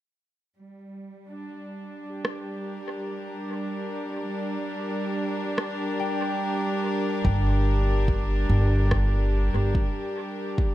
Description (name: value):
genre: ambient dub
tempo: 72 BPM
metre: 4/4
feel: straight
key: unclear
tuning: A4 = 440 Hz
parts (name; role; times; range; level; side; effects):
- warm chamber string section; sustained chords; 0.6-10.7 s; G3 to Bb4; -29 LUFS; equal; none
- electronic rim click; drums; 2.2-9.1 s; none; -32 LUFS; equal; overdrive, low-pass filter on snare, studio reverb, dub echo
- concert harp; arpeggios; 6.0-7.7 s; G5; -36 LUFS; left 3 dB; tape echo
- upright bass; bass; 7.2-9.7 s; G1; -22 LUFS; equal; none
- electronic kick drum; drums; 7.2-10.7 s; none; -25 LUFS; equal; studio reverb
room: studio reverb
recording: echo-heavy mix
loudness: -24 LUFS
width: side -14 dB against mid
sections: 0.6-7.2 A section; 7.2-10.7 B section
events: filter sweep on drum 0.6-7.2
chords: 0.6 Gm